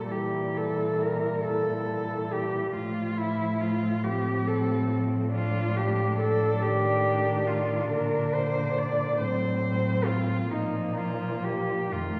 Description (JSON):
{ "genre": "classical, lyrical piece for cello ensemble", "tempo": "46 BPM (dotted quarters)", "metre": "6/8", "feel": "uneven beats, rubato", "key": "F major, Bb major from 5.3 s", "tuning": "A4 = 438 Hz", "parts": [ { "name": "muted cello", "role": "melody", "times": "0.0-12.2 s", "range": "Eb4 to D5", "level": "-31 LUFS", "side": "equal", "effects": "none" }, { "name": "muted cello", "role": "second line", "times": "0.0-12.2 s", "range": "D3 to F#3", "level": "-36 LUFS", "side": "equal", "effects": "none" }, { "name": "muted cello", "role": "accompaniment", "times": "0.0-12.2 s", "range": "G3 to D4", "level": "-34 LUFS", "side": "equal", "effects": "none" }, { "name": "muted cello", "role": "bass", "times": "0.0-12.2 s", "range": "F2 to Bb2", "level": "-33 LUFS", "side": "equal", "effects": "none" } ], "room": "wet concert hall reverb, RT60 2.1 s", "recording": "heard from further back in the room", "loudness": "-27 LUFS", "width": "mono", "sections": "0.0-12.2 A section", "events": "none", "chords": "0.1 Gm69/Bb; 2.7 F/A; 5.3 F7/A; 7.9 Bb; 9.2 Am6; 10.5 Bb5" }